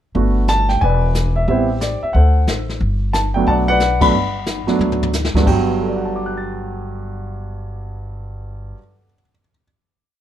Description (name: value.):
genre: jazz piano trio.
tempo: 180 BPM.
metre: 4/4.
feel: swing 64% on 8ths.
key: G major.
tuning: A4 = 439 Hz.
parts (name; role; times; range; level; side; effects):
warm baby grand piano; melody; 0.1-9.6 s; G2 to A6; -18 LUFS; right 1 dB; none.
upright bass; bass; 0.1-8.7 s; E1 to D2; -19 LUFS; equal; none.
jazz brush drum kit; drums; 0.2-5.6 s; brushed snare drum, crash cymbal, hi-hat, kick drum, ride cymbal, snare drum, toms; -23 LUFS; left 2 dB; none.
room: light reverb.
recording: none.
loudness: -15 LUFS.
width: side -11 dB against mid.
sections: 0.1-5.5 A section; 5.5-8.1 final chord.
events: band accent 4.0; drum fill 4.8-5.5.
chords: 0.1 Gmaj7; 0.8 E7; 1.5 Am7; 2.1 D7; 2.8 Gmaj7.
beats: | 0.15 0.48 0.81 1.14 | 1.48 1.81 2.14 2.47 | 2.80 3.14 3.47 3.80 | 4.13 4.47 4.80 5.13 | 5.47 5.80 6.14 6.47 | 6.81 7.14 7.48 7.81.